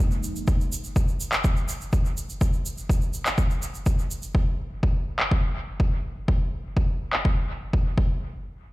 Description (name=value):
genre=dub techno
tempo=124 BPM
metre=4/4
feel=straight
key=none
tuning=none
part: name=egg shaker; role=percussion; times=0.0-4.3 s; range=none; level=-36 LUFS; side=right 4 dB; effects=none
part: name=electronic kick drum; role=drums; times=0.5-8.1 s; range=none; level=-22 LUFS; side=equal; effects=none
part: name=electronic handclaps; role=drums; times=1.3-7.2 s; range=none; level=-28 LUFS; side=equal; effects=low-pass filter on snare, dub echo
room=digital ambience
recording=played on a big sound system in a bare room, large studio reverb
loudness=-23 LUFS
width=side -19 dB against mid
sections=0.0-8.2 A section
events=none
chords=none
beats=| 0.48 0.96 1.44 1.93 | 2.41 2.90 3.38 3.86 | 4.35 4.83 5.31 5.80 | 6.28 6.77 7.25 7.73